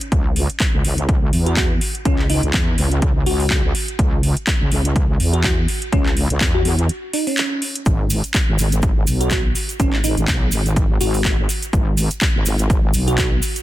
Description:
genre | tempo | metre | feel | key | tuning
bass house | 124 BPM | 4/4 | swing 56% on 16ths | unclear | A4 = 441 Hz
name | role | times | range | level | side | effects
house drum kit | drums | 0.0-13.6 s | handclaps, hi-hat | -23 LUFS | equal | overdrive
wobble bass | bass | 0.1-13.4 s | G#1 to E2 | -19 LUFS | equal | chorus, tube saturation, sidechain pumping
electronic kick drum | drums | 0.1-13.3 s | none | -19 LUFS | equal | overdrive
bell-like FM electric piano | melody | 1.5-13.3 s | C#4 to F#4 | -25 LUFS | equal | chorus, phaser, tape echo
cabasa | percussion | 7.9-13.6 s | none | -28 LUFS | right 2 dB | none
room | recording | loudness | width
little or no reverb | dense, heavily limited modern master | -16 LUFS | side -15 dB against mid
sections
0.0-13.6 A section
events
break 6.9-7.9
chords
0.1 C#m; 7.9 G#m

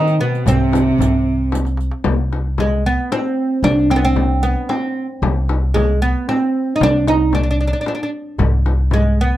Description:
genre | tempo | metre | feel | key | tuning
Arabic maqam ensemble | 113 BPM | 3/4 | straight | C maqam nahawand | A4 = 441 Hz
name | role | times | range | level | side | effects
oud | melody | 0.0-9.4 s | Ab3 to Eb4 | -18 LUFS | right 2 dB | none
rich studio cello section | second line | 0.0-1.5 s | B2 to Eb3 | -20 LUFS | right 1 dB | none
darbuka | percussion | 0.1-2.0, 8.4-9.0 s | none | -23 LUFS | right 2 dB | none
riq | percussion | 0.1-1.9 s | none | -28 LUFS | right 2 dB | none
upright bass | bass | 0.5-9.3 s | C2 | -17 LUFS | equal | none
frame drum | percussion | 0.5-9.0 s | none | -23 LUFS | left 6 dB | none
room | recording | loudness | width
little or no reverb | dark, warm production | -15 LUFS | side -14 dB against mid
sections
0.0-2.0 A section; 2.0-9.4 B section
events
drum fill 1.5-2.0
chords
none

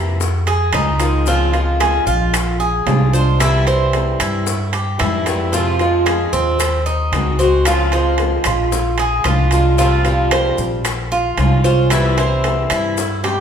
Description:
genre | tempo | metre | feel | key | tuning
latin, Cuban son and guajira | 113 BPM | 4/4 | straight | unclear | A4 = 440 Hz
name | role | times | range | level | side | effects
picked swing-style acoustic guitar | accompaniment | 0.0-13.0 s | C3 to Gb4 | -20 LUFS | left 1 dB | none
upright bass | bass | 0.0-13.4 s | Bb1 to G2 | -18 LUFS | equal | none
bongos | percussion | 0.2-13.4 s | none | -27 LUFS | left 5 dB | none
maracas | percussion | 0.2-13.4 s | none | -31 LUFS | left 7 dB | none
Cuban tres | arpeggios | 0.5-13.4 s | C4 to C5 | -20 LUFS | right 2 dB | none
timbales | percussion | 0.5-13.4 s | none | -25 LUFS | right 4 dB | none
claves | percussion | 0.7-13.0 s | none | -33 LUFS | left 8 dB | none
room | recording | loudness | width
wet large studio reverb, RT60 1.4 s | band playing live in one room | -14 LUFS | side -8 dB against mid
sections
0.0-13.4 A section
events
drum fill 5.3, 13.2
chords
0.2 Fm7; 1.3 Dbmaj7; 2.3 Bb7; 3.4 C; 5.5 Fm; 6.6 Ab7/Eb; 7.7 Dbmaj7; 8.7 Bb7; 9.8 Csus4; 10.9 Bbm7; 11.9 C

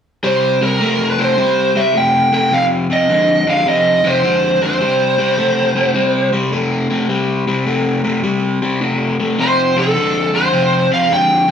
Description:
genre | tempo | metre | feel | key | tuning
blues | 105 BPM | 4/4 | swing 67% on 8ths | unclear | A4 = 441 Hz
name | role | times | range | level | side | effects
lead guitar through a small cranked amp | melody | 0.2-11.5 s | A4 to G5 | -14 LUFS | right 1 dB | overdrive
overdriven electric guitar | riff | 0.2-11.5 s | F2 to A3 | -16 LUFS | left 2 dB | phaser
room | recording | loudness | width
moderate large studio reverb, RT60 1.1 s | band playing live in one room | -13 LUFS | side -8 dB against mid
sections
0.2-11.5 A section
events
none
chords
0.2 C5; 2.5 F5; 4.8 C5; 9.4 F5

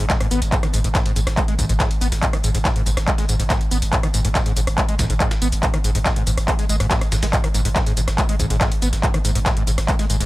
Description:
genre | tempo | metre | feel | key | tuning
driving peak-time techno | 141 BPM | 4/4 | straight | G# minor | A4 = 441 Hz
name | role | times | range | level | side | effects
screaming distorted acid line | riff | 0.0-10.3 s | G#2 to B3 | -25 LUFS | equal | distortion, ensemble chorus, sidechain pumping, tape echo
saturated sub bass | bass | 0.0-10.3 s | G#1 | -22 LUFS | equal | tube saturation, sidechain pumping, low-pass filter
dusty soul sampler-style drum kit | drums | 0.1-10.2 s | hi-hat, shaker, snare drum | -31 LUFS | equal | high-pass filter on perc, high-pass filter on snare, high-pass filter on hats
electronic kick drum | drums | 0.1-10.0 s | none | -21 LUFS | equal | none
techno drum kit | drums | 0.1-10.3 s | handclaps, hi-hat, rim click, tambourine | -23 LUFS | equal | none
room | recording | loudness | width
little or no reverb | dry, gritty hardware recording | -17 LUFS | side -18 dB against mid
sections
0.0-10.3 A section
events
none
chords
0.0 G#5

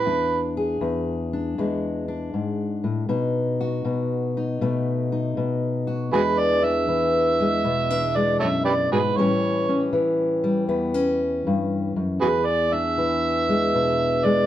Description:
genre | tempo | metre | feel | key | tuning
acoustic country blues, solo or duo | 79 BPM | 4/4 | swing 66% on 8ths | E mixolydian | A4 = 440 Hz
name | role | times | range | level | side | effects
overdriven harmonica | melody | 0.0-0.5, 6.1-14.5 s | F#4 to E5 | -22 LUFS | right 3 dB | none
fingerpicked steel-string acoustic guitar | accompaniment | 0.0-14.5 s | E2 to G#4 | -22 LUFS | left 2 dB | none
room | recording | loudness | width
moderate small room reverb, RT60 0.6 s | heard from further back in the room | -20 LUFS | side -12 dB against mid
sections
0.0-6.1 A section; 6.1-14.5 B section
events
harmonica solo 6.1-14.5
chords
0.0 E7; 3.1 B7; 6.1 E7; 9.2 A7; 12.2 E7

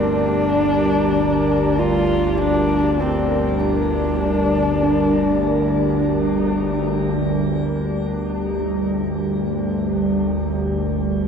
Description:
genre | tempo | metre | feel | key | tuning
dark ambient drone | free time | none | none | unclear | A4 = 440 Hz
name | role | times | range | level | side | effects
dark horsehead fiddle | melody | 0.0-6.1 s | C4 to F4 | -23 LUFS | equal | shimmer reverb, dub echo
deep dark ambient pad | sustained chords | 0.0-11.3 s | G3 to D5 | -21 LUFS | equal | chorus, built-in reverb, shimmer reverb
gamelan-type bronze metallophone | arpeggios | 0.0-11.3 s | D4 | -26 LUFS | right 5 dB | shimmer reverb, dub echo
bowed-like drone | drone | 0.0-11.3 s | G1 to D2 | -22 LUFS | equal | built-in reverb
bronze singing bowl | texture | 0.0-11.3 s | none | barely audible | none | none
room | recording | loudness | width
wet plate reverb, RT60 3.8 s | echo-heavy mix | -17 LUFS | side -6 dB against mid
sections
0.0-7.3 A section; 7.3-11.3 B section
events
none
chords
0.0 Gm

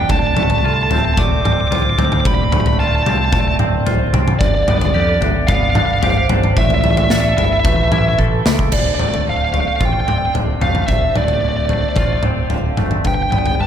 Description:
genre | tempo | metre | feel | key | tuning
post-rock | 111 BPM | 4/4 | straight | D dorian | A4 = 442 Hz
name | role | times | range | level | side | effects
bluesy overdriven lead guitar | melody | 0.0-13.7 s | D5 to D6 | -19 LUFS | equal | distortion, tape echo
twangy electric guitar | arpeggios | 0.0-13.7 s | D2 to A4 | -24 LUFS | equal | lush chorus, slapback echo, tape echo
vibraphone with hard mallets | arpeggios | 0.0-13.7 s | A4 to F5 | -25 LUFS | right 6 dB | slapback echo, tape echo
growling picked electric bass | bass | 0.0-13.7 s | D1 to F2 | -20 LUFS | equal | overdrive
big rock drum kit | drums | 0.1-13.6 s | crash cymbal, kick drum, snare drum, toms | -17 LUFS | left 1 dB | none
room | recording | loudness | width
moderate lush hall reverb, RT60 1.6 s, small room reverb | big arena sound | -13 LUFS | side -9 dB against mid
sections
0.0-8.7 A section; 8.7-13.7 B section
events
drum fill 8.2-8.7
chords
0.1 Dm7; 4.4 Gadd9; 6.6 Asus2; 8.7 Dm7; 13.1 G

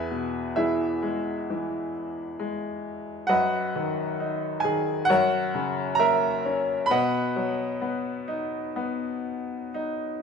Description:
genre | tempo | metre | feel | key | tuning
classical, lyrical solo piano | 66 BPM | 4/4 | rubato | B major | A4 = 440 Hz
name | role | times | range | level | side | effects
bright upright piano | solo | 0.0-10.2 s | E2 to B5 | -24 LUFS | equal | none
room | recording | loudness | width
moderate recital hall reverb, RT60 1.4 s | minimal, uncompressed stereo recording | -24 LUFS | side -6 dB against mid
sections
0.0-10.2 A section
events
none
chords
0.0 E; 3.3 B/F#; 5.1 F#7; 6.9 B

